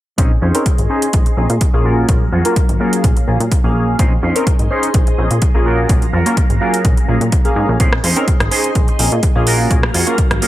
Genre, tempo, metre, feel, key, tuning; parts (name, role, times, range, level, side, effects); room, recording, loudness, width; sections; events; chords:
filtered disco house; 126 BPM; 4/4; straight; Bb minor; A4 = 440 Hz
funky polysynth comp; accompaniment; 0.2-10.5 s; Bb3 to F5; -19 LUFS; equal; chorus, phaser, cassette tape, sidechain pumping, low-pass filter
phased string machine; sustained chords; 0.2-10.5 s; Gb3 to C6; -25 LUFS; left 1 dB; ensemble chorus, phaser, vintage 12-bit sampler grit, sidechain pumping, low-pass filter
electric guitar with an envelope filter; riff; 0.2-10.5 s; Db4 to C5; -22 LUFS; right 1 dB; analog chorus, sidechain pumping, low-pass filter
plucky analog bass; bass; 0.2-10.4 s; Ab1 to Bb2; -17 LUFS; equal; sidechain pumping, low-pass filter
electronic kick drum; drums; 0.2-10.3 s; -14 LUFS; equal
house drum kit; drums; 0.2-10.5 s; hi-hat, rim click; -20 LUFS; right 1 dB; sidechain pumping on hats
light reverb; bright 1980s-style digital production; -12 LUFS; side -14 dB against mid
0.2-10.5 A section
filter sweep 0.2-10.5
0.2 Bbm11; 1.9 Gbmaj7; 4.0 Bbm11; 5.7 Gbmaj7; 7.8 Bbm11; 9.5 Gbmaj7